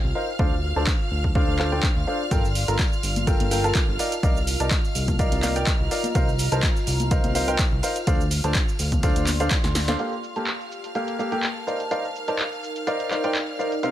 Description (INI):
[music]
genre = piano house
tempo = 125 BPM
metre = 4/4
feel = swing 54% on 16ths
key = G minor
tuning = A4 = 440 Hz
[part]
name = rich studio violin section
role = sustained chords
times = 0.0-13.9 s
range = F5 to F6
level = -33 LUFS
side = right 1 dB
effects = sidechain pumping
[part]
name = fat analog bass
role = bass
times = 0.0-10.0 s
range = G1 to D2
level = -25 LUFS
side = equal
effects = sidechain pumping
[part]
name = warbly tape-like pad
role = texture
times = 0.0-13.9 s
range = C3 to C6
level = -33 LUFS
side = equal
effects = chorus, built-in reverb, sidechain pumping
[part]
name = bright baby grand piano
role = riff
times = 0.2-13.9 s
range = C3 to Bb5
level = -27 LUFS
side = equal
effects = sidechain pumping, low-pass filter, dub echo
[part]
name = electronic kick drum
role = drums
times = 0.4-9.6 s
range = none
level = -23 LUFS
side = equal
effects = none
[part]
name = punchy analog drum machine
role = drums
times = 0.9-13.9 s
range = handclaps, hi-hat, shaker, snare drum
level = -28 LUFS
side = equal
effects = low-pass filter on snare, low-pass filter on hats, low-pass filter on perc
[part]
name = tambourine and congas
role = percussion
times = 2.3-10.0 s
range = none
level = -35 LUFS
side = left 3 dB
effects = none
[sound]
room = small room ambience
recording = none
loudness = -21 LUFS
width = side -12 dB against mid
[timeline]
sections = 0.0-10.0 A section; 10.0-13.9 B section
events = fade-in on ambient pad 0.0-10.0; drum fill 9.6-10.0; filter sweep on grand piano 10.0-13.9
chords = 0.4 Dm7; 2.3 Gm9; 4.0 Cm11; 6.2 F7sus4/C; 8.1 Dm7; 10.0 Gm9; 11.7 Cm11